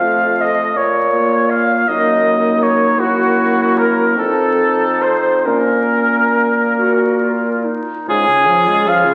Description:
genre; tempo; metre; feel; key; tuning
classical, slow romantic movement for wind quintet; 44-55 BPM (dotted quarters); 6/8; rubato; Bb minor; A4 = 441 Hz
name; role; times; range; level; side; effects
silver concert flute; melody; 0.0-9.1 s; Gb4 to F5; -21 LUFS; equal; none
warm oboe; second line; 0.0-9.1 s; Gb4 to F5; -18 LUFS; equal; none
clear clarinet; accompaniment; 0.0-9.1 s; Db4 to Gb4; -26 LUFS; equal; none
mellow French horn; accompaniment; 0.0-9.1 s; Ab2 to C4; -23 LUFS; equal; none
mellow bassoon; bass; 0.0-9.1 s; F2 to Db3; -23 LUFS; equal; none
room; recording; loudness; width
wet scoring stage reverb, RT60 1.6 s; very old 78 rpm record, vinyl crackle; -15 LUFS; mono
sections
0.0-8.1 A section; 8.1-9.1 B section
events
none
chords
0.0 F; 0.8 Bbm; 1.9 Ebm/Gb; 3.0 Gb7; 4.2 F7; 5.5 Bbm; 8.1 Db/Ab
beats
| 0.76 1.88 | 2.99 4.17 | 5.47 6.79 | 8.08

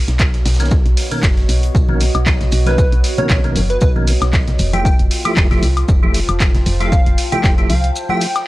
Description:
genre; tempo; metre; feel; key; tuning
deep house; 116 BPM; 4/4; swing 55% on 16ths; unclear; A4 = 440 Hz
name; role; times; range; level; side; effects
woody FM bass; bass; 0.0-7.9 s; F1 to C2; -18 LUFS; equal; sidechain pumping
warbly tape-like pad; texture; 0.0-8.5 s; B3 to A5; -26 LUFS; right 2 dB; chorus, built-in reverb, sidechain pumping
punchy analog drum machine; drums; 0.1-8.4 s; handclaps, hi-hat, woodblock; -22 LUFS; left 1 dB; none
raw garage drum kit; drums; 0.1-8.5 s; hi-hat, shaker, snare drum; -32 LUFS; equal; sidechain pumping on hats, high-pass filter on hats, high-pass filter on snare, sidechain pumping on perc, high-pass filter on perc, high-pass filter on room
electronic kick drum; drums; 0.2-7.6 s; none; -15 LUFS; equal; none
percussive tonewheel organ; stabs; 0.6-8.3 s; B2 to G4; -23 LUFS; equal; chorus vibrato, fast rotary speaker, sidechain pumping, analog delay
congas; percussion; 1.9-8.2 s; none; -25 LUFS; left 2 dB; none
plucky unison lead; melody; 2.7-8.5 s; B4 to G5; -22 LUFS; equal; cassette tape, analog delay
room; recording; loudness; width
studio reverb; dry, gritty hardware recording, transformer saturation, cassette tape; -12 LUFS; side -18 dB against mid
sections
0.0-8.5 A section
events
break 8.0-8.5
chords
0.0 Bmaj9; 4.6 Fmaj9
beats
0.20 0.71 1.23 | 1.75 2.27 2.78 3.30 | 3.82 4.33 4.85 5.37 | 5.89 6.40 6.92 7.44 | 7.96 8.47

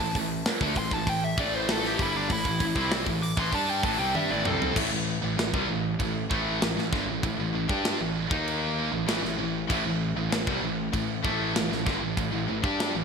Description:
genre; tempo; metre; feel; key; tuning
heavy metal; 97 BPM; 4/4; straight; A minor; A4 = 439 Hz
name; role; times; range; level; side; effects
nasal lead guitar with a parked wah; melody; 0.0-4.8 s; D4 to D6; -30 LUFS; equal; overdrive, digital delay
fuzz guitar; riff; 0.0-13.0 s; G2 to G4; -34 LUFS; left 1 dB; distortion
high-gain distorted guitar; riff; 0.0-13.0 s; G2 to G4; -32 LUFS; left 12 dB; distortion
scooped high-gain guitar; riff; 0.0-13.0 s; G2 to G4; -31 LUFS; right 10 dB; distortion
fuzz picked electric bass; bass; 0.0-13.0 s; G1 to G2; -33 LUFS; equal; overdrive
tight metal drum kit; drums; 0.0-12.9 s; crash cymbal, hi-hat, kick drum, snare drum, toms; -30 LUFS; equal; gated reverb
room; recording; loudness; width
light reverb, studio reverb; bright 1980s-style digital production; -24 LUFS; side -6 dB against mid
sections
0.0-4.8 A section; 4.8-13.0 B section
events
lead electric guitar solo 0.0-4.8; drum fill 4.1-4.8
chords
0.0 Am; 8.3 D#5; 8.9 Am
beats
0.46 1.07 1.69 | 2.30 2.92 3.53 4.15 | 4.76 5.38 5.99 6.61 | 7.23 7.84 8.46 9.08 | 9.70 10.32 10.94 11.55 | 12.17 12.79

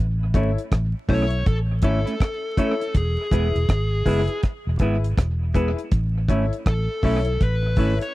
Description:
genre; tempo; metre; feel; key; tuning
roots reggae; 81 BPM; 4/4; swing 60% on 16ths; A major; A4 = 440 Hz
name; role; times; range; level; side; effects
vintage muted fingered electric bass; bass; 0.0-8.0 s; E1 to B1; -22 LUFS; equal; none
semi-hollow electric guitar; accompaniment; 0.3-7.9 s; G#3 to E4; -28 LUFS; right 3 dB; dub echo
warm upright piano; stabs; 0.3-8.0 s; E4 to C#5; -28 LUFS; left 6 dB; none
deep reggae drum kit; drums; 0.3-8.1 s; hi-hat, kick drum, rim click; -22 LUFS; equal; none
dark smooth lead guitar; melody; 1.1-8.1 s; G#4 to C#5; -28 LUFS; left 1 dB; overdrive, dub echo
room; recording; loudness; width
little or no reverb; dry, close 1970s-style studio recording, vinyl crackle; -19 LUFS; side -18 dB against mid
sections
0.0-8.1 A section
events
none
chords
0.0 A; 2.9 E; 5.9 A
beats
0.72 1.46 2.21 | 2.95 3.69 4.43 5.18 | 5.92 6.66 7.40

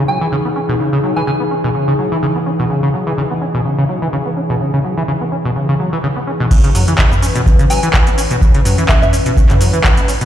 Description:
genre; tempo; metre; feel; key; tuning
acid house; 126 BPM; 4/4; swing 54% on 16ths; C# minor; A4 = 440 Hz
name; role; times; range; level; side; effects
warbly tape-like pad; sustained chords; 0.0-10.2 s; E3 to B4; -19 LUFS; left 1 dB; chorus, built-in reverb, phaser, sidechain pumping
deep acid bass; riff; 0.0-10.2 s; B2 to C#4; -17 LUFS; equal; tube saturation, lush chorus, tape echo
soft synth bell; melody; 0.1-1.4, 7.7-9.1 s; E5 to G#5; -24 LUFS; right 1 dB; chorus, dub echo
booming analog drum machine; drums; 6.5-10.2 s; cabasa, crash cymbal, handclaps, hi-hat, toms; -16 LUFS; equal; overdrive, low-pass filter on cymbals, low-pass filter on perc, low-pass filter on hats, low-pass filter on toms, low-pass filter on snare, low-pass filter on room
electronic kick drum; drums; 6.5-9.9 s; none; -12 LUFS; equal; overdrive
room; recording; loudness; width
moderate lush hall reverb, RT60 2.3 s; played on a big sound system in a bare room, large studio reverb; -12 LUFS; side -11 dB against mid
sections
0.0-6.5 A section; 6.5-10.2 B section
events
drop 6.5-10.2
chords
0.0 C#m; 6.5 C#m7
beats
0.32 | 0.80 1.27 1.75 2.23 | 2.70 3.18 3.65 4.13 | 4.61 5.08 5.56 6.03 | 6.51 6.99 7.46 7.94 | 8.41 8.89 9.37 9.84

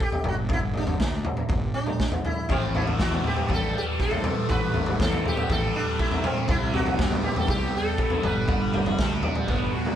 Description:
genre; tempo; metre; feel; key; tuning
psychedelic rock; 120 BPM; 4/4; straight; A dorian; A4 = 440 Hz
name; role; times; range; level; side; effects
sitar; melody; 0.0-9.9 s; C4 to B4; -29 LUFS; equal; none
raw garage drum kit; drums; 0.0-10.0 s; kick drum, snare drum, toms; -25 LUFS; equal; none
fuzz fingered electric bass; bass; 0.2-9.7 s; G1 to G2; -30 LUFS; left 1 dB; overdrive
overdriven combo organ; sustained chords; 2.5-10.0 s; G3 to B5; -39 LUFS; right 4 dB; none
fuzz guitar; riff; 2.5-10.0 s; A2 to G4; -29 LUFS; right 1 dB; distortion, phaser
room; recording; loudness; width
moderate studio reverb, RT60 0.9 s; band playing live in one room; -22 LUFS; side -10 dB against mid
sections
0.0-10.0 A section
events
none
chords
0.3 G5; 2.5 Am7; 6.5 Cmaj7; 8.2 Gmaj7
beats
0.00 | 0.50 1.00 1.50 2.00 | 2.50 2.99 3.49 3.99 | 4.49 4.99 5.49 5.99 | 6.49 6.99 7.49 7.99 | 8.48 8.98 9.48

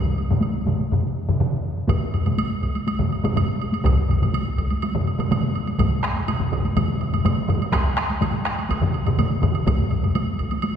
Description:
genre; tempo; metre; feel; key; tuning
japanese traditional, taiko drum ensemble; 123 BPM; 4/4; straight; none; none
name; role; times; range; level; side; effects
woodblock; percussion; 0.2-10.7 s; none; -32 LUFS; right 5 dB; none
taiko ensemble; percussion; 0.3-10.7 s; none; -27 LUFS; equal; none
taiko ensemble; percussion; 0.3-10.2 s; none; -24 LUFS; left 2 dB; none
taiko ensemble; percussion; 0.3-10.1 s; none; -26 LUFS; right 3 dB; none
taiko ensemble; percussion; 1.9-10.5 s; none; -25 LUFS; equal; none
room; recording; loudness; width
wet concert hall reverb, RT60 2.3 s; heard from further back in the room; -20 LUFS; side -8 dB against mid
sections
0.0-1.9 A section; 1.9-10.8 B section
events
none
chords
none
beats
0.42 0.91 1.40 | 1.89 2.38 2.87 3.36 | 3.85 4.33 4.82 5.31 | 5.79 6.28 6.77 7.25 | 7.74 8.22 8.71 9.19 | 9.67 10.15 10.64

